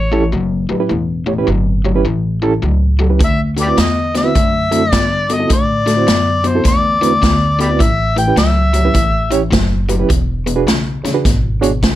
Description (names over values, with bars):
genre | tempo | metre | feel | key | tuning
electric blues shuffle | 104 BPM | 4/4 | swing 64% on 8ths | A mixolydian | A4 = 440 Hz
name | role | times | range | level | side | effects
overdriven harmonica | melody | 0.0-9.5 s | G4 to G5 | -16 LUFS | left 2 dB | slapback echo
overdriven electric guitar | riff | 0.0-12.0 s | E2 to B3 | -19 LUFS | left 4 dB | none
upright bass | bass | 0.0-12.0 s | E1 to A2 | -18 LUFS | equal | none
bright reed electric piano | accompaniment | 0.1-11.7 s | C4 to C#5 | -18 LUFS | right 6 dB | fast tremolo
swinging big-band drum kit | drums | 3.2-12.0 s | hi-hat, kick drum, snare drum | -16 LUFS | equal | none
room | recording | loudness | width
light reverb | none | -12 LUFS | side -13 dB against mid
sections
0.0-12.0 A section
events
none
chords
0.0 A7; 3.2 D7; 7.8 A7; 10.1 E7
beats
0.33 | 0.90 1.48 2.05 2.63 | 3.20 3.78 4.35 4.93 | 5.50 6.08 6.65 7.22 | 7.80 8.38 8.95 9.52 | 10.10 10.67 11.25 11.82